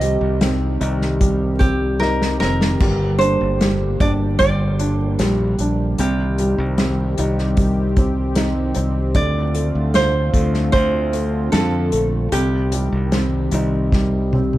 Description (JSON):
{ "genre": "pop ballad", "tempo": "76 BPM", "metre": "4/4", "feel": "straight", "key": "unclear", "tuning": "A4 = 441 Hz", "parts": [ { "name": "nylon-string guitar", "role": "melody", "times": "0.0-14.6 s", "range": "G4 to Eb5", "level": "-22 LUFS", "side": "right 2 dB", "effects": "none" }, { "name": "felt-muted upright piano", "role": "accompaniment", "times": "0.0-14.6 s", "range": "C3 to F4", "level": "-24 LUFS", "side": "right 1 dB", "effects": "none" }, { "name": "warm analog pad", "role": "sustained chords", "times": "0.0-14.6 s", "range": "D3 to G4", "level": "-25 LUFS", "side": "equal", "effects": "chorus" }, { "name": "modern bright fingered electric bass", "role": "bass", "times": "0.0-14.6 s", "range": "F1 to F2", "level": "-20 LUFS", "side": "equal", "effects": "none" }, { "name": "unplugged drum kit", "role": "drums", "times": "0.0-14.6 s", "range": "hi-hat, kick drum, snare drum, splash cymbal, toms", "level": "-21 LUFS", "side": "equal", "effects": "none" } ], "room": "light reverb, small room ambience", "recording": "dark, warm production, vinyl crackle", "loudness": "-16 LUFS", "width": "side -15 dB against mid", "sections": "0.0-14.6 A section", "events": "drum fill 2.0-2.8, 13.9-14.6", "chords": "0.0 Cm; 2.8 Gm; 6.0 Cm; 9.2 Dm7; 12.3 Cm" }